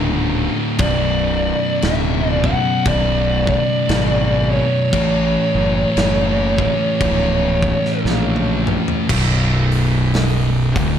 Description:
stoner and doom metal; 58 BPM; 4/4; swing 59% on 8ths; B minor; A4 = 444 Hz
thick fuzz guitar; riff; 0.0-11.0 s; B1 to A3; -21 LUFS; left 8 dB; distortion
thick fuzz guitar; riff; 0.0-11.0 s; B1 to A3; -21 LUFS; right 8 dB; distortion
fuzz fingered electric bass; bass; 0.0-11.0 s; B0 to A#1; -21 LUFS; equal; overdrive
fuzz lead guitar; melody; 0.8-8.0 s; C#5 to F#5; -20 LUFS; equal; distortion, tape echo
big rock drum kit; drums; 0.8-11.0 s; crash cymbal, hi-hat, kick drum, snare drum, toms; -23 LUFS; equal
small room ambience; dark, warm production; -15 LUFS; side -9 dB against mid
0.0-9.1 A section; 9.1-11.0 B section
drum fill 8.1-9.1
0.0 D5; 0.8 Bm; 4.9 A; 9.1 Bm
| 0.80 1.83 2.86 3.90 | 4.93 5.97 7.01 8.05 | 9.09 10.14

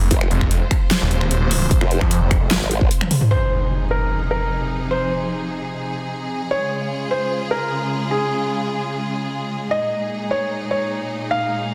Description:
heavy wobble dubstep; 150 BPM; 4/4; half-time; F minor; A4 = 438 Hz
clear studio string section; sustained chords; 0.0-11.7 s; Bb2 to C5; -28 LUFS; equal; sidechain pumping, low-pass filter
snarling distorted saw bass; bass; 0.0-2.5 s; Eb1 to F2; -22 LUFS; equal; distortion, overdrive
formant-sweep wobble bass; bass; 0.1-2.9 s; F1 to Ab1; -24 LUFS; equal; chorus, overdrive
big-room dance drum kit; drums; 0.1-3.3 s; finger snaps, hi-hat, snare drum, toms; -23 LUFS; equal
electronic kick drum; drums; 0.1-2.9 s; -21 LUFS; equal
felt-muted upright piano; melody; 3.3-11.7 s; Ab4 to F5; -26 LUFS; equal; digital delay
impact; sound effects; 3.3-4.9 s; -26 LUFS; equal
light reverb, digital ambience; dense, heavily limited modern master; -21 LUFS; mono
0.0-3.3 A section; 3.3-11.7 B section
drop 0.0-3.3; drum fill 3.0-3.3; impact 3.3-4.9
0.0 Fm; 3.3 Fm7; 6.5 Db; 9.7 Ebsus4
| 0.11 0.51 0.91 1.31 | 1.71 2.11 2.51 2.91 | 3.31 3.71 4.11 4.51 | 4.91 5.31 5.71 6.11 | 6.51 6.91 7.31 7.71 | 8.11 8.51 8.91 9.31 | 9.71 10.11 10.51 10.91 | 11.31 11.71

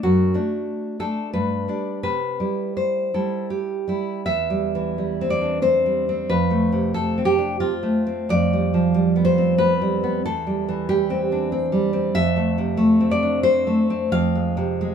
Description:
romantic piece for solo classical guitar; 75-95 BPM; 3/4; rubato; C major; A4 = 440 Hz
nylon-string guitar; solo; 0.0-14.9 s; E2 to F5; -19 LUFS; equal
light reverb; band playing live in one room; -19 LUFS; side -7 dB against mid
0.0-4.3 A section; 4.3-14.9 B section
0.0 D/F#; 1.3 G; 2.1 C; 4.3 C/E; 6.3 F; 8.3 G7/F; 10.2 C/E; 12.2 F; 14.1 Dm7b5/F (rootless)
| 0.02 0.67 1.34 | 2.05 2.79 3.51 | 4.28 4.97 5.63 | 6.29 6.94 7.59 | 8.29 8.96 9.60 | 10.24 10.88 11.52 | 12.15 12.80 13.46 | 14.14 14.80

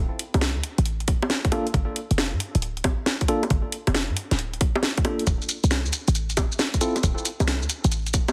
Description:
UK garage, two-step garage; 136 BPM; 4/4; swing 67% on 16ths; D minor; A4 = 437 Hz
short 808-style bass; bass; 0.0-8.2 s; D1 to G2; -27 LUFS; equal
garage drum kit; drums; 0.2-8.3 s; bongos, finger snaps, hi-hat, shaker, snare drum; -28 LUFS; equal; studio reverb
electronic kick drum; drums; 1.1-8.3 s; -26 LUFS; equal; studio reverb
tine electric piano; stabs; 1.5-7.0 s; Bb3 to A4; -32 LUFS; equal; tape echo
light reverb; heavily compressed radio sound; -24 LUFS; mono
0.0-8.3 A section
0.0 D7(no3); 1.5 Gm7; 5.3 D7(no3)
0.42 0.86 1.30 | 1.74 2.18 2.62 3.06 | 3.51 3.95 4.39 4.83 | 5.27 5.71 6.15 6.59 | 7.04 7.48 7.92

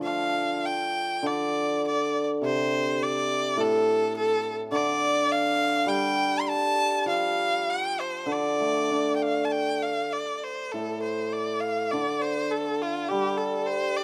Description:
chinese traditional, Chinese chamber ensemble; 101 BPM; 4/4; rubato; D yu mode; A4 = 440 Hz
clear erhu; melody; 0.0-14.0 s; F4 to C6; -29 LUFS; equal
hammered dulcimer; accompaniment; 0.0-14.0 s; A2 to D4; -30 LUFS; equal
light reverb; close, detailed microphones; -26 LUFS; mono
0.0-9.5 A section; 9.5-14.0 B section
| 0.02 0.62 1.23 1.83 | 2.42 3.00 3.58 4.15 | 4.72 5.29 5.88 6.47 | 7.07 7.67 8.28 8.90 | 9.52 10.13 10.74 11.34 | 11.94 12.53 13.11 13.70

